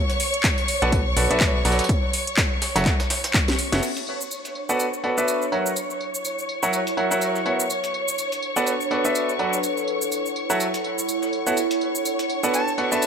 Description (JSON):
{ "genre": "piano house", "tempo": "124 BPM", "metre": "4/4", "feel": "swing 57% on 16ths", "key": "B minor", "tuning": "A4 = 442 Hz", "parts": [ { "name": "clear symphonic string section", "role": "sustained chords", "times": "0.0-13.1 s", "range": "C#5 to C#6", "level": "-28 LUFS", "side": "equal", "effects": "sidechain pumping, low-pass filter" }, { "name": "breakbeat sampler-style drum kit", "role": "drums", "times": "0.1-13.1 s", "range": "hi-hat, snare drum, tambourine", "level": "-33 LUFS", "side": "right 2 dB", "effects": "sidechain pumping on perc, high-pass filter on perc, low-pass filter on perc, sidechain pumping on hats, high-pass filter on hats, low-pass filter on hats, high-pass filter on snare, low-pass filter on snare" }, { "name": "house drum kit", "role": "drums", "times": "0.2-13.1 s", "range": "crash cymbal, handclaps, hi-hat, shaker, snare drum", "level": "-26 LUFS", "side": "equal", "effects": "overdrive" }, { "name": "electronic kick drum", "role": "drums", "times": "0.4-3.5 s", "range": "none", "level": "-23 LUFS", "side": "equal", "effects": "overdrive" }, { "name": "bright concert grand piano", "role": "riff", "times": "0.8-13.1 s", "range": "F#3 to F#5", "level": "-24 LUFS", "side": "equal", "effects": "vintage 12-bit sampler grit, sidechain pumping, digital delay" }, { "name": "plucky analog bass", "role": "bass", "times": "0.8-3.8 s", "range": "F#1 to B1", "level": "-25 LUFS", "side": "equal", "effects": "sidechain pumping" }, { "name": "warbly tape-like pad", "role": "texture", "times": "4.5-13.1 s", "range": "D4 to F#5", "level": "-28 LUFS", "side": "right 2 dB", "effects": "chorus, built-in reverb, sidechain pumping" }, { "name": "breathy bright jazz flute", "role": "melody", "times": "12.5-13.1 s", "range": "A5", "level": "-26 LUFS", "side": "equal", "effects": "none" } ], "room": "moderate plate reverb, RT60 1.8 s, digital ambience", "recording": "none", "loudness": "-20 LUFS", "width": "side -6 dB against mid", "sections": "0.0-3.8 A section; 3.8-13.1 B section", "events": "drum fill 3.5-3.8; filter sweep on string section 3.8-13.1", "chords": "0.0 Bm7; 1.9 F#m7; 3.8 Bm7; 5.5 F#7; 7.7 Bm7; 9.6 F#m7; 11.6 Bm7", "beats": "0.44 0.92 1.41 | 1.89 2.38 2.86 3.34 | 3.83 4.31 4.79 5.28 | 5.76 6.25 6.73 7.21 | 7.70 8.18 8.67 9.15 | 9.63 10.12 10.60 11.09 | 11.57 12.05 12.54 13.02" }